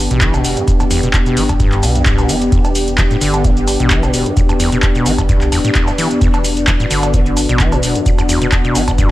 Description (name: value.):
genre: acid house.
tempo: 130 BPM.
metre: 4/4.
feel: swing 54% on 16ths.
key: E minor.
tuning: A4 = 440 Hz.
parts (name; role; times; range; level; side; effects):
dark analog pad; sustained chords; 0.0-9.1 s; B3 to G4; -18 LUFS; left 1 dB; chorus, vintage 12-bit sampler grit, sidechain pumping.
warm sub bass; bass; 0.0-9.1 s; E1 to B1; -20 LUFS; equal; tube saturation, sidechain pumping.
deep acid bass; riff; 0.1-9.1 s; E2 to E3; -18 LUFS; equal; overdrive, sidechain pumping, diffuse ambient delay.
electro analog drum machine; drums; 0.1-9.1 s; cowbell, handclaps, hi-hat, shaker; -19 LUFS; right 1 dB; none.
electronic kick drum; drums; 0.2-9.1 s; none; -15 LUFS; equal; none.
room: light reverb.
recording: none.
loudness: -11 LUFS.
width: side -16 dB against mid.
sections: 0.0-9.1 A section.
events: none.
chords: 0.0 Em.